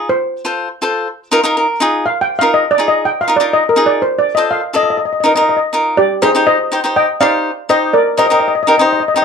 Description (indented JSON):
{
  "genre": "calypso",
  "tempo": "122 BPM",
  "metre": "4/4",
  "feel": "straight",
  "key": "Eb major",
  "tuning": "A4 = 440 Hz",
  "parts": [
    { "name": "cavaquinho", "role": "accompaniment", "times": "0.0-9.2 s", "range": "Eb4 to D5", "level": "-14 LUFS", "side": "equal", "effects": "none" },
    { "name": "steel pan", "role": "melody", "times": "0.1-9.2 s", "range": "G4 to G5", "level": "-13 LUFS", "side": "left 1 dB", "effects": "none" }
  ],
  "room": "wet studio ambience, RT60 0.5 s",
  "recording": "dark, warm production",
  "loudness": "-11 LUFS",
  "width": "side -6 dB against mid",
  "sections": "0.0-6.0 A section; 6.0-9.2 B section",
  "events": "cavaquinho fill 1.3-2.1",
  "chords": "0.1 F; 1.1 Ebsus2; 4.0 F; 5.0 Bbsus4; 6.0 Cm; 7.9 Eb"
}